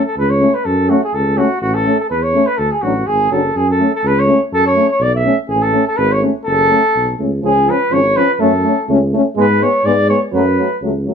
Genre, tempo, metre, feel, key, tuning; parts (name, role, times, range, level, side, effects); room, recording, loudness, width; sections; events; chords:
balkan folk, Balkan brass band; 124 BPM; 2/4; swing 55% on 16ths; F# minor, F# harmonic minor from 7.4 s; A4 = 438 Hz
warm flugelhorn; melody; 0.0-10.8 s; F#4 to E5; -15 LUFS; equal
mellow French horn; accompaniment; 0.0-11.1 s; A3 to D4; -19 LUFS; left 5 dB
warm euphonium; accompaniment; 0.0-11.1 s; E#3 to A3; -20 LUFS; right 4 dB
mellow tuba; bass; 0.2-11.1 s; F#1 to G#2; -17 LUFS; equal
moderate studio reverb, RT60 0.6 s; -12 LUFS; side -7 dB against mid
0.0-7.4 A section; 7.4-11.1 B section
0.0 F#m; 1.6 A; 2.6 D; 3.6 F#m; 5.5 A; 6.5 F#m; 7.4 C#; 8.4 F#m; 9.4 G#madd11; 10.3 F#m